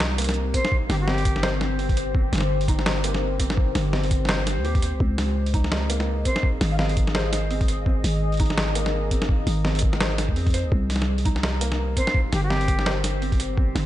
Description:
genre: half-time drum and bass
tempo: 168 BPM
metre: 4/4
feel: swing 58% on 16ths, half-time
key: unclear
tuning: A4 = 439 Hz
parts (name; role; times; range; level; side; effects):
- deep dark ambient pad; sustained chords; 0.0-13.9 s; C4 to Eb5; -32 LUFS; left 3 dB; chorus, built-in reverb, sidechain pumping
- felt-muted upright piano; arpeggios; 0.0-13.9 s; Bb3 to C5; -32 LUFS; right 1 dB; dub echo
- growling 808-style bass; bass; 0.0-13.9 s; G1 to F2; -24 LUFS; equal; none
- boom bap sampler-style drum kit; drums; 0.0-13.8 s; hi-hat, snare drum; -27 LUFS; equal; none
- jazz flute; melody; 0.5-1.5, 6.3-6.9, 12.0-12.9 s; G4 to F5; -30 LUFS; equal; dub echo
- electronic kick drum; drums; 0.5-13.7 s; none; -23 LUFS; equal; none
room: little or no reverb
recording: nothing above 10.8 kHz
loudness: -20 LUFS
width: side -14 dB against mid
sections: 0.0-13.9 A section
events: none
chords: 0.0 Eb6/G; 5.0 Db5; 10.7 Cm7

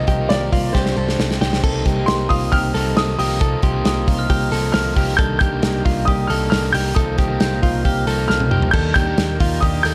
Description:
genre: jangly indie pop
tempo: 135 BPM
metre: 4/4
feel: straight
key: C dorian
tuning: A4 = 440 Hz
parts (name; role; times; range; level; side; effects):
- warm upright piano; melody; 0.0-9.9 s; C5 to G6; -25 LUFS; equal; slapback echo, tape echo
- combo organ; accompaniment; 0.0-9.9 s; C4 to C5; -31 LUFS; equal; slapback echo
- crunchy overdriven guitar; accompaniment; 0.0-9.9 s; C3 to Bb4; -29 LUFS; equal; slapback echo
- direct-recorded clean electric guitar; arpeggios; 0.0-9.9 s; F4 to A4; -27 LUFS; equal; slapback echo
- vintage muted picked electric bass; bass; 0.0-9.9 s; C2 to Eb2; -25 LUFS; equal; none
- loose indie drum kit; drums; 0.1-9.9 s; crash cymbal, hi-hat, kick drum, snare drum, toms; -22 LUFS; equal; none
- glockenspiel with soft plastic mallets; second line; 3.6-4.6, 7.4-8.2 s; C6 to G6; -34 LUFS; equal; slapback echo
room: light reverb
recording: none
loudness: -18 LUFS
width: mono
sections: 0.0-1.6 A section; 1.6-9.9 A section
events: drum fill 0.7-1.6, 8.3-8.7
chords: 0.0 F7sus4/C; 0.7 Csus2; 1.6 Cm7; 5.2 Ebmaj7/C; 7.0 F7sus4/C; 8.7 Ebmaj7

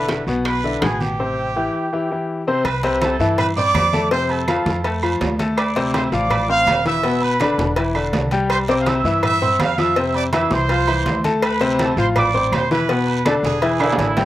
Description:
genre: latin, salsa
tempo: 164 BPM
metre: 4/4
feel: straight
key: unclear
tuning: A4 = 438 Hz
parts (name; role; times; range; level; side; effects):
- clear trumpet section; melody; 0.0-14.1 s; G4 to E6; -21 LUFS; right 2 dB; none
- bright baby grand piano; accompaniment; 0.0-14.2 s; B2 to C6; -20 LUFS; left 3 dB; none
- upright bass; bass; 0.0-14.2 s; E1 to G2; -25 LUFS; right 1 dB; none
- bongos and cowbell; percussion; 0.1-14.2 s; none; -27 LUFS; left 3 dB; none
- congas; percussion; 0.1-14.2 s; none; -26 LUFS; equal; none
- guiro; percussion; 0.1-14.2 s; none; -36 LUFS; right 5 dB; none
- timbales and agogo bells; percussion; 0.1-14.2 s; none; -26 LUFS; right 5 dB; slapback echo
- claves; percussion; 0.5-14.0 s; none; -34 LUFS; right 3 dB; none
- brilliant trombone section; second line; 13.8-14.2 s; E4; -23 LUFS; right 3 dB; slapback echo
room: little or no reverb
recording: recorded outdoors, with no room sound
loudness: -16 LUFS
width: side -14 dB against mid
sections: 0.0-2.7 A section; 2.7-14.2 B section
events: drum fill 13.8-14.2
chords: 0.0 E7; 1.2 Am7; 2.7 Cmaj7; 4.1 F6; 5.6 Dm7; 7.0 E5; 7.8 Em7; 8.5 C; 10.0 Fmaj7; 11.4 Dm7; 12.9 E7sus4; 13.6 E7

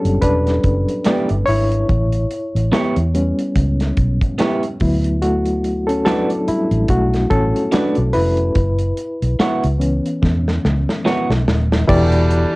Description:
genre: lush 1970s-style soul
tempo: 72 BPM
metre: 4/4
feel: swing 58% on 16ths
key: unclear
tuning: A4 = 440 Hz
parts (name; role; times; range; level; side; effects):
- barky reed electric piano; accompaniment; 0.0-12.6 s; E3 to D5; -19 LUFS; left 1 dB; overdrive, fast tremolo
- vintage muted fingered electric bass; bass; 0.0-12.4 s; D#1 to E2; -18 LUFS; equal; none
- modern studio drum kit; drums; 0.1-12.5 s; crash cymbal, hi-hat, kick drum, snare drum; -21 LUFS; equal; none
- electric guitar through a small old amp; riff; 1.1-11.3 s; B3 to D5; -19 LUFS; right 2 dB; none
- mellow horn section; stabs; 11.9-12.5 s; B2 to D4; -21 LUFS; right 1 dB; none
room: light reverb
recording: home recording on cassette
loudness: -15 LUFS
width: side -23 dB against mid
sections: 0.0-11.9 A section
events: reed electric piano solo 0.0-11.9; drum fill 10.2-11.9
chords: 0.0 Em7; 1.9 A9; 4.8 D6; 8.6 F#7sus4; 11.9 Em7

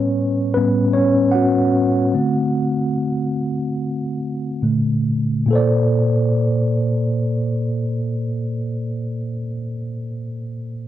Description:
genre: R&B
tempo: 67-78 BPM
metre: 4/4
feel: swing 62% on 16ths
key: Bb major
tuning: A4 = 436 Hz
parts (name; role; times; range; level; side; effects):
- mellow tine electric piano; solo; 0.0-10.9 s; A2 to Gb5; -18 LUFS; equal; medium stereo tremolo, cassette tape
room: light reverb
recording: home recording on cassette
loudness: -17 LUFS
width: side -12 dB against mid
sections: 0.0-5.5 A section; 5.5-9.1 B section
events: slowing down 0.0-5.5; tine electric piano solo 0.0-5.5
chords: 0.0 A7; 2.1 D5; 4.6 Bbmaj7; 5.5 Bbmaj9

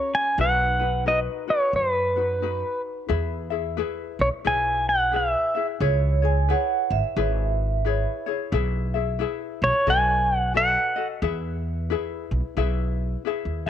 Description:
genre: Hawaiian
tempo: 89 BPM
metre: 4/4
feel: swing 62% on 8ths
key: B major, E major from 3.1 s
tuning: A4 = 441 Hz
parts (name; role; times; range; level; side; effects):
- pedal steel guitar; melody; 0.0-11.1 s; B4 to G#5; -21 LUFS; equal; none
- ukulele; accompaniment; 0.0-13.7 s; C#4 to E5; -29 LUFS; left 12 dB; none
- upright bass; bass; 0.4-13.7 s; G#1 to F#2; -26 LUFS; right 1 dB; none
- vibraphone with medium hard mallets; second line; 5.8-8.2 s; C#5 to G#5; -26 LUFS; right 13 dB; slapback echo
room: light reverb, studio reverb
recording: 1960s-style stereo with parts hard left and right, faint mains hum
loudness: -21 LUFS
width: side -10 dB against mid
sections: 0.0-3.1 A section; 3.1-13.7 B section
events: none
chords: 0.4 Bmaj7; 3.1 E; 5.8 C#m7; 8.5 E/B; 9.9 B7; 11.2 E

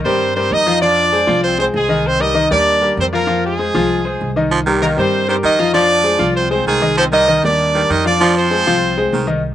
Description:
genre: latin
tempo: 195 BPM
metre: 4/4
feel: straight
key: unclear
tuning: A4 = 440 Hz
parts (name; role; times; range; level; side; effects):
- clear grand piano; accompaniment; 0.0-9.4 s; Eb3 to F5; -18 LUFS; left 2 dB; slapback echo
- upright bass; bass; 0.0-9.5 s; C2 to G2; -24 LUFS; right 1 dB; none
- brilliant horn section; melody; 0.1-9.3 s; Ab3 to Eb5; -15 LUFS; right 1 dB; none
- raspy baritone saxophone; second line; 4.5-9.3 s; Eb3 to F3; -19 LUFS; right 5 dB; none
room: little or no reverb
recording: recorded outdoors, with no room sound, nothing above 10.4 kHz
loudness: -12 LUFS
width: side -11 dB against mid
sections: 0.0-9.4 A section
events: none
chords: 0.0 Cm7; 0.8 Fm7; 2.1 Cm7; 3.3 Fm7; 4.5 Cm7; 5.7 Fm7; 7.0 Cm7; 8.2 Fm7

